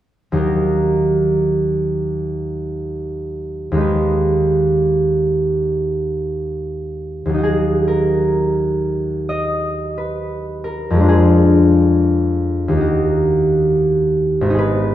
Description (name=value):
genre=classical, solo harp piece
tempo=58-73 BPM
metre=4/4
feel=rubato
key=Eb minor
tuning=A4 = 440 Hz
part: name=concert harp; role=solo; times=0.3-14.9 s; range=Ab1 to Eb5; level=-15 LUFS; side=equal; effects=none
room=wet recital hall reverb, RT60 1.7 s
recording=none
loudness=-15 LUFS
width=side -12 dB against mid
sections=0.4-7.4 A section; 7.4-14.9 B section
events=none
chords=0.4 Ebm; 3.8 Abm/Eb; 7.4 Ebm; 11.1 Ddim/F; 12.8 Ebm